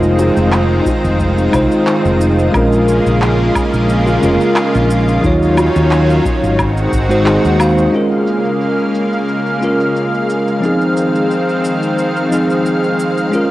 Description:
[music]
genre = sunset chillout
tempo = 89 BPM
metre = 4/4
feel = swing 53% on 16ths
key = Bb minor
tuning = A4 = 440 Hz
[part]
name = bell-like tine electric piano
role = accompaniment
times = 0.0-13.5 s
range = F3 to F5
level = -15 LUFS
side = equal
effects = auto-pan, cassette tape, analog delay
[part]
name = lush unison pad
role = sustained chords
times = 0.0-13.5 s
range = Db3 to F5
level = -16 LUFS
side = equal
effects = chorus, cassette tape
[part]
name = mellow fretless electric bass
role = bass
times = 0.0-7.9 s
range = F1 to Eb2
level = -15 LUFS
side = equal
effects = analog chorus
[part]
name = electronic shaker, handclaps and woodblock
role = drums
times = 0.0-13.5 s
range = none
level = -23 LUFS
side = equal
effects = low-pass filter on perc, low-pass filter on snare, low-pass filter on room
[part]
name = twinkling granular texture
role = texture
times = 0.0-8.0 s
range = Eb4 to Eb5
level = -28 LUFS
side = left 1 dB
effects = none
[part]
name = bongos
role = percussion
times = 0.2-6.4 s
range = none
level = -23 LUFS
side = equal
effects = none
[part]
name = electronic kick drum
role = drums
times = 0.9-7.1 s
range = none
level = -21 LUFS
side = equal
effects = none
[sound]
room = moderate lush hall reverb, RT60 2.2 s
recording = home recording on cassette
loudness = -11 LUFS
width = side -16 dB against mid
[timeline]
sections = 0.0-7.9 A section; 7.9-13.5 B section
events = none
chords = 0.0 Fm7; 2.5 Bbm7; 5.2 Ebm9; 6.6 Ab7; 7.9 Bbm7; 10.6 Fm7

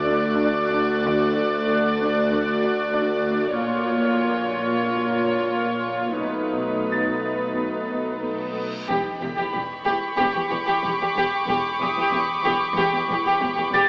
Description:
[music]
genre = cinematic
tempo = 93 BPM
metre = 4/4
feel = straight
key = unclear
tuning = A4 = 444 Hz
[part]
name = warm chamber violin section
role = melody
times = 0.0-13.9 s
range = G4 to D5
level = -24 LUFS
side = equal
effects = none
[part]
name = dark studio viola section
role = accompaniment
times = 0.0-8.6 s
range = A3 to F#4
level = -24 LUFS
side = equal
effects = none
[part]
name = dark studio cello section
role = bass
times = 0.0-13.8 s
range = D2 to B2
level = -30 LUFS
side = equal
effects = none
[part]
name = rich studio double bass section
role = bass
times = 0.0-13.8 s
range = E1 to D2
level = -35 LUFS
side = equal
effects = none
[part]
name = concert harp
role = texture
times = 0.0-3.0, 6.9-13.9 s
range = C#6 to B6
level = -29 LUFS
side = equal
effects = none
[part]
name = warm symphonic violin section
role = texture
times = 0.0-3.3, 8.9-13.7 s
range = B5 to F#6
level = -27 LUFS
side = equal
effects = none
[part]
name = warm studio cello section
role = riff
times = 0.1-13.9 s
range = E2 to D4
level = -32 LUFS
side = equal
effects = none
[part]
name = reverse cymbal and sub drop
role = sound effects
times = 8.2-11.5 s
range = none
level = -43 LUFS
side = equal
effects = none
[sound]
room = wet huge ambient reverb, RT60 7.4 s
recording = in a vast, echoing space, AM radio sound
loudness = -20 LUFS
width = side -38 dB against mid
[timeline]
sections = 0.0-8.9 A section; 8.9-13.9 B section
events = reverse cymbal 8.2-8.9; impact 8.9-11.5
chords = 0.0 D; 3.6 A#m; 6.2 B7; 8.9 Em

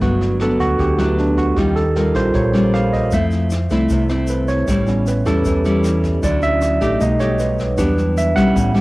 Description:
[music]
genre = bossa nova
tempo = 154 BPM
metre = 4/4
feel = straight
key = unclear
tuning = A4 = 440 Hz
[part]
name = barky tine electric piano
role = accompaniment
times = 0.0-8.8 s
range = F#3 to F#5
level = -19 LUFS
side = right 2 dB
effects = cassette tape
[part]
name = nylon-string guitar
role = accompaniment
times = 0.0-8.8 s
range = G2 to G4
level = -19 LUFS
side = left 1 dB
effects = cassette tape
[part]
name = fingered electric bass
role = bass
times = 0.0-8.8 s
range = G1 to F2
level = -20 LUFS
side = equal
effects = none
[part]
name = jazz brush drum kit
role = drums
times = 0.0-8.8 s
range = kick drum, rim click, snare drum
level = -26 LUFS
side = equal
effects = cassette tape
[part]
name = tube shaker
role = percussion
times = 3.1-8.8 s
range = none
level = -39 LUFS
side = left 3 dB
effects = none
[sound]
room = light reverb, studio ambience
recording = home recording on cassette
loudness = -14 LUFS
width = side -20 dB against mid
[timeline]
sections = 0.0-8.8 A section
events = tine electric piano solo 0.0-8.8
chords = 0.0 Gmaj7; 1.6 Eb9; 3.1 Fmaj7; 4.7 A7; 6.2 Dmaj9; 7.0 B7b13; 7.8 Em7

